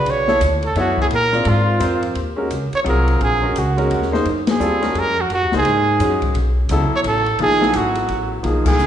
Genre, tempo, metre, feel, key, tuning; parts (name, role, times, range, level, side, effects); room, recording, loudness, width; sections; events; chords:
modal jazz; 172 BPM; 3/4; swing 63% on 8ths; A4 = 439 Hz
mellow trumpet; melody; 0.0-8.9 s; E#4 to C#5; -19 LUFS; right 2 dB
clear concert grand piano; accompaniment; 0.0-8.9 s; C#3 to D5; -21 LUFS; left 1 dB
upright bass; bass; 0.0-8.9 s; Ab1 to A#2; -21 LUFS; equal
open jazz drum kit; drums; 0.1-8.9 s; crash cymbal, hi-hat, kick drum, ride cymbal, snare drum; -26 LUFS; left 2 dB
wet recital hall reverb, RT60 1.2 s; recorded in a church or concert hall, nothing above 10.5 kHz; -15 LUFS; side -10 dB against mid
0.0-2.2 A section; 2.2-8.9 B section
band accent 4.4, 8.6
0.0 Bm11; 1.1 A#7; 2.2 Ebm11; 6.4 B9sus4